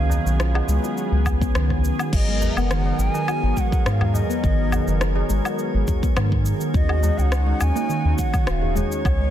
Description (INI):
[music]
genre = organic downtempo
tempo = 104 BPM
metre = 4/4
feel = straight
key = G# dorian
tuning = A4 = 435 Hz
[part]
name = breathy bright bass bansuri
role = melody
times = 0.0-9.3 s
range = C#5 to G#5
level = -30 LUFS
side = right 1 dB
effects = ping-pong delay
[part]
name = warm analog pad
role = sustained chords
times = 0.0-9.3 s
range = F#3 to A#4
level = -29 LUFS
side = equal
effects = chorus, sidechain pumping
[part]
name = handpan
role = arpeggios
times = 0.0-9.3 s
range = D#3 to G#4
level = -26 LUFS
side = equal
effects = tape echo
[part]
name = round analog bass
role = bass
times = 0.0-9.3 s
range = D#1 to G#2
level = -21 LUFS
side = equal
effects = sidechain pumping
[part]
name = drifting glass-harmonics texture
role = texture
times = 0.0-9.3 s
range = C#5 to G#5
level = -36 LUFS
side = right 3 dB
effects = chorus, built-in reverb
[part]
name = deep house drum kit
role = drums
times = 0.1-9.2 s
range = crash cymbal, rim click, shaker, woodblock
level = -29 LUFS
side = left 2 dB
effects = none
[part]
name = tabla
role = percussion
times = 0.1-9.3 s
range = none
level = -32 LUFS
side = left 1 dB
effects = none
[part]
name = electronic kick drum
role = drums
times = 1.3-9.2 s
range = none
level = -22 LUFS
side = equal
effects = none
[sound]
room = digital ambience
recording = dense, heavily limited modern master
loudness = -18 LUFS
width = side -11 dB against mid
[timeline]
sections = 0.0-9.3 A section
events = none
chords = 0.0 C#7; 2.1 G#m9; 6.7 D#m7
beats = 0.40 0.97 1.55 | 2.13 2.70 3.28 3.86 | 4.43 5.01 5.59 6.16 | 6.74 7.32 7.89 8.47 | 9.05